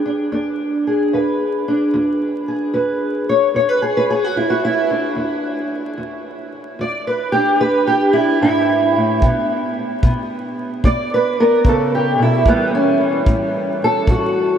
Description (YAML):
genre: acoustic country blues, solo or duo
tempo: 74 BPM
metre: 4/4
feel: swing 67% on 8ths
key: E mixolydian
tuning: A4 = 440 Hz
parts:
  - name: fingerpicked steel-string acoustic guitar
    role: melody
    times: 0.0-14.6 s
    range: E2 to D5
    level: -15 LUFS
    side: equal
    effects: lush chorus, diffuse ambient delay
  - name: kick drum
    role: drums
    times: 9.2-14.3 s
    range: none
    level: -15 LUFS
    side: equal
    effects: none
room: wet huge ambient reverb, RT60 7.6 s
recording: dreamy mix soaked in reverb, vinyl crackle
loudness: -15 LUFS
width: side -8 dB against mid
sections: 0.0-14.6 A section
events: steel-string acoustic guitar solo 0.0-14.6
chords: 0.0 E7; 9.2 N.C.; 12.5 A7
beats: 0.30 1.12 1.93 | 2.74 3.55 4.36 5.17 | 5.98 6.79 7.60 8.41 | 9.22 10.03 10.84 11.65 | 12.46 13.27 14.08